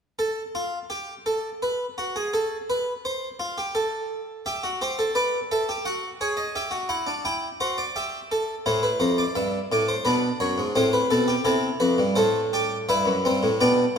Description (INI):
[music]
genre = classical, baroque-style 4-part fugue for harpsichord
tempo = 85 BPM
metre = 3/4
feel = straight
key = A minor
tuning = A4 = 440 Hz
[part]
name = harpsichord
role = solo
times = 0.2-14.0 s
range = F2 to G5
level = -22 LUFS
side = equal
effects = none
[sound]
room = moderate concert hall reverb, RT60 2.0 s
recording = minimal, uncompressed stereo recording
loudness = -22 LUFS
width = side -7 dB against mid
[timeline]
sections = 0.2-14.0 A section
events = none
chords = 0.2 N.C.; 4.5 Em; 5.9 F#sus2; 6.6 Em; 8.0 Em/G; 8.7 Am; 10.1 G#dim/B; 10.8 Am; 12.9 Em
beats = | 0.19 0.90 1.61 | 2.33 3.04 3.75 | 4.46 5.17 5.87 | 6.57 7.26 7.97 | 8.67 9.37 10.07 | 10.77 11.48 12.19 | 12.90 13.61